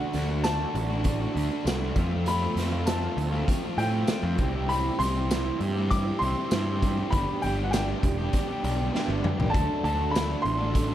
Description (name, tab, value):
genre	indie rock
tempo	99 BPM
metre	4/4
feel	straight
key	unclear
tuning	A4 = 440 Hz
part	clear upright piano	melody	0.0-10.9 s	F#5 to D6	-32 LUFS	left 1 dB	slapback echo
part	biting overdriven guitar	riff	0.0-10.9 s	E3 to A4	-34 LUFS	left 9 dB	none
part	overdriven electric guitar	riff	0.0-10.9 s	E3 to G4	-33 LUFS	right 8 dB	analog chorus, slapback echo
part	fuzz picked electric bass	bass	0.1-10.9 s	E1 to A2	-28 LUFS	equal	overdrive
part	raw garage drum kit	drums	0.1-10.9 s	hi-hat, kick drum, snare drum, tambourine, toms	-29 LUFS	equal	none
room	studio reverb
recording	none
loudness	-24 LUFS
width	side -12 dB against mid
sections	0.0-10.9 A section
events	drum fill 8.9-9.5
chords	0.0 D; 2.0 Fadd9; 4.4 C; 7.1 G; 9.5 D